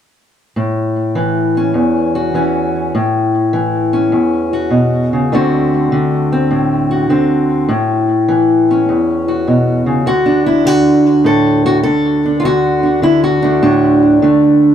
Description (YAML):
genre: acoustic country blues, solo or duo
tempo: 101 BPM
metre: 4/4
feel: swing 68% on 8ths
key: D major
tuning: A4 = 441 Hz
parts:
  - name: fingerpicked steel-string acoustic guitar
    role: solo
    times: 0.6-14.7 s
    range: D2 to A4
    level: -11 LUFS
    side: equal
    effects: tape echo
room: moderate studio ambience, RT60 0.5 s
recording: heard from further back in the room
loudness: -11 LUFS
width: side -9 dB against mid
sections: 0.6-10.1 A section; 10.1-14.7 B section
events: none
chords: 0.6 A; 5.3 D7; 7.7 A; 10.1 D